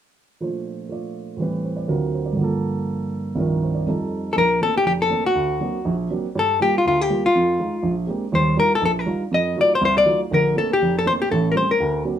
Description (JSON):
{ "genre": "jazz", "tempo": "242 BPM", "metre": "4/4", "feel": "swing 59% on 8ths", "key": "Bb major", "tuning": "A4 = 442 Hz", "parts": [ { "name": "dark baby grand piano", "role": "accompaniment", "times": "0.4-12.2 s", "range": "F1 to D5", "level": "-22 LUFS", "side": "right 2 dB", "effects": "none" }, { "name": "hollow-body jazz guitar", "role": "melody", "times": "4.3-12.0 s", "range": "F4 to Eb5", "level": "-18 LUFS", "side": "left 2 dB", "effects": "none" } ], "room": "moderate studio reverb, RT60 0.6 s", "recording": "band playing live in one room", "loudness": "-18 LUFS", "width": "side -10 dB against mid", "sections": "0.4-4.4 A section; 4.4-12.2 B section", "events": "none", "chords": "0.4 Bbmaj7; 1.4 Am7; 1.9 D7alt; 2.4 Gm7; 3.4 Cm11; 3.9 F7; 4.4 Bbmaj9; 5.3 Daug7; 6.3 Gm7; 7.3 Fm7; 7.8 Bb13; 8.3 Ebmaj9; 9.3 F7b9; 10.3 Bbmaj9; 11.3 Am7", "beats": "| 0.39 0.64 0.89 1.14 | 1.38 1.63 1.88 2.13 | 2.38 2.62 2.87 3.12 | 3.37 3.61 3.86 4.11 | 4.36 4.61 4.85 5.10 | 5.35 5.60 5.84 6.09 | 6.34 6.59 6.83 7.08 | 7.33 7.58 7.83 8.07 | 8.32 8.57 8.81 9.06 | 9.31 9.56 9.80 10.05 | 10.30 10.55 10.80 11.04 | 11.29 11.54 11.79 12.03" }